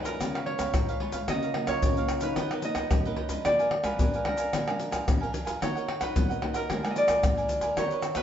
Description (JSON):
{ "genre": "samba and choro", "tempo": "111 BPM", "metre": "4/4", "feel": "straight", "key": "unclear", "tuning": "A4 = 440 Hz", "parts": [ { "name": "Celtic harp", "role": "melody", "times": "0.0-8.2 s", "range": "Bb4 to Eb5", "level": "-29 LUFS", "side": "right 1 dB", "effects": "none" }, { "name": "cavaquinho", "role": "accompaniment", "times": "0.0-8.2 s", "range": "D4 to Ab5", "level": "-36 LUFS", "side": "right 4 dB", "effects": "none" }, { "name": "nylon-string guitar", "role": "accompaniment", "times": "0.0-8.2 s", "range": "F2 to A#4", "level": "-35 LUFS", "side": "left 2 dB", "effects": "none" }, { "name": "maracas, pandeiro, surdo and tamborim", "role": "percussion", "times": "0.1-8.2 s", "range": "none", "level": "-29 LUFS", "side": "left 1 dB", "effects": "none" } ], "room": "wet studio reverb, RT60 0.8 s", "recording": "heard from further back in the room, nothing above 7.7 kHz", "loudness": "-25 LUFS", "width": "side -9 dB against mid", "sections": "0.0-8.2 A section", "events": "none", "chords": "0.2 Db7; 1.3 Gbmaj7/Db; 2.4 Bmaj7; 3.5 Bb7; 5.6 Ebm; 6.7 Bb7/D", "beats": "0.20 0.75 | 1.29 1.83 2.37 2.91 | 3.45 3.99 4.53 5.07 | 5.61 6.16 6.70 7.24 | 7.78" }